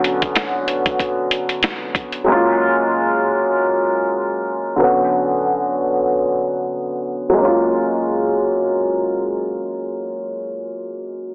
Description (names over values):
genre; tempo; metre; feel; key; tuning
hip hop, boom-bap hip-hop; 94 BPM; 4/4; swing 56% on 16ths; F# major; A4 = 439 Hz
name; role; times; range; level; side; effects
dark upright piano; accompaniment; 0.0-11.3 s; D3 to F#4; -16 LUFS; equal; high-pass filter, low-pass filter
boom bap sampler-style drum kit; drums; 0.0-2.3 s; hi-hat, kick drum, snare drum; -19 LUFS; equal; none
room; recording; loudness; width
light reverb; heavily compressed radio sound, telephone sound; -16 LUFS; side -35 dB against mid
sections
0.0-7.4 A section; 7.4-9.9 B section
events
filter sweep on upright piano 0.0-7.4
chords
0.0 Bmadd9; 2.3 F#maj7; 4.8 Bmadd9; 7.4 F#maj7